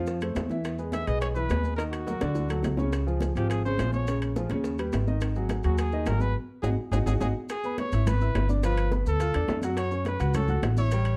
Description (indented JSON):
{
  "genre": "Afro-Cuban jazz",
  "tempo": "210 BPM",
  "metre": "4/4",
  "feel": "straight",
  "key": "G# minor, C# minor from 7.5 s",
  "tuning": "A4 = 439 Hz",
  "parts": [
    { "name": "clear grand piano", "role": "accompaniment", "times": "0.0-11.2 s", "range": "C#3 to F#6", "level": "-34 LUFS", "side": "equal", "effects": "none" },
    { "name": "upright bass", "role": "bass", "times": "0.0-11.2 s", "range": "G1 to F#2", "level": "-29 LUFS", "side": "equal", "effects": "none" },
    { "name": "bongos", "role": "percussion", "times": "0.1-11.1 s", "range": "none", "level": "-42 LUFS", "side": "equal", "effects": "none" },
    { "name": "congas", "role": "percussion", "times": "0.1-11.2 s", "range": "none", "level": "-38 LUFS", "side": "equal", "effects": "none" },
    { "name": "maracas", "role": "percussion", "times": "0.1-11.2 s", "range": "none", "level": "-54 LUFS", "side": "equal", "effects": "none" },
    { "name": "timbales", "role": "percussion", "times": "0.2-11.2 s", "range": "none", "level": "-41 LUFS", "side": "equal", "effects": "none" },
    { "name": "warm trumpet", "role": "melody", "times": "0.9-11.2 s", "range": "F#4 to E5", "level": "-35 LUFS", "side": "equal", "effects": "plate reverb" }
  ],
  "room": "light reverb",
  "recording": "dark, warm production",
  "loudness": "-27 LUFS",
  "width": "mono",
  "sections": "0.0-7.5 A section; 7.5-11.2 B section",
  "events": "drum fill 2.1-2.9, 6.8-7.5; band accent 6.4-7.5",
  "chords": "0.1 F; 0.7 Emaj7; 1.8 D#m; 2.4 D; 2.9 C#maj7; 4.1 A#m7; 4.6 D#aug7; 5.2 G#5; 7.5 C#m7; 8.6 G9; 9.8 F#m7",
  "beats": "0.08 0.36 | 0.65 0.94 1.22 1.51 | 1.79 2.08 2.36 2.65 | 2.93 3.22 3.50 3.79 | 4.07 4.36 4.64 4.93 | 5.21 5.50 5.78 6.07 | 6.36 6.64 6.92 7.21 | 7.50 7.78 8.06 8.35 | 8.63 8.92 9.20 9.49 | 9.77 10.06 10.34 10.63 | 10.91"
}